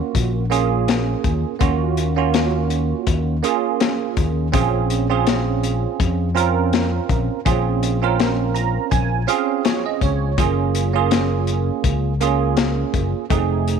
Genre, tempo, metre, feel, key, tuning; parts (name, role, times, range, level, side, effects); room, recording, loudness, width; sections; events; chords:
straight-eighth soul blues; 82 BPM; 4/4; swing 56% on 16ths; Bb minor; A4 = 441 Hz
bell-like tine electric piano; accompaniment; 0.0-13.8 s; A3 to Bb5; -21 LUFS; right 13 dB; analog chorus
crunchy breakbeat drum kit; drums; 0.1-13.8 s; hi-hat, kick drum, snare drum; -21 LUFS; left 6 dB
fingered electric bass; bass; 0.2-13.8 s; F1 to F2; -21 LUFS; left 2 dB
little or no reverb; 1960s-style stereo with parts hard left and right; -17 LUFS; side -6 dB against mid
0.0-13.8 A section
tine electric piano fill 8.2-10.4
0.0 Ebm9; 4.5 Bbm9; 10.4 Gbmaj7